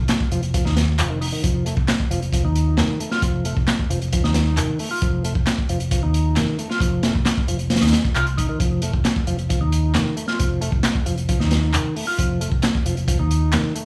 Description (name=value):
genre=breakbeat, breaks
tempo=134 BPM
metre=4/4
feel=straight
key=unclear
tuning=A4 = 440 Hz
part: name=vintage muted fingered electric bass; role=bass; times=0.0-13.6 s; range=F1 to Eb2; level=-24 LUFS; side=equal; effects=none
part: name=crunchy breakbeat drum kit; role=drums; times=0.1-13.8 s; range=hi-hat, kick drum, snare drum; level=-24 LUFS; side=equal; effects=none
part: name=electronic handclaps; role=drums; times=0.1-13.6 s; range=none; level=-28 LUFS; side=equal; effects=none
part: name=percussive tonewheel organ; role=riff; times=0.3-13.8 s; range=Eb3 to F4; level=-29 LUFS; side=equal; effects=slow rotary speaker, tube saturation, tape echo
room=light reverb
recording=vinyl crackle, studio reverb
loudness=-21 LUFS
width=mono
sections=0.0-13.8 A section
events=none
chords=0.0 F7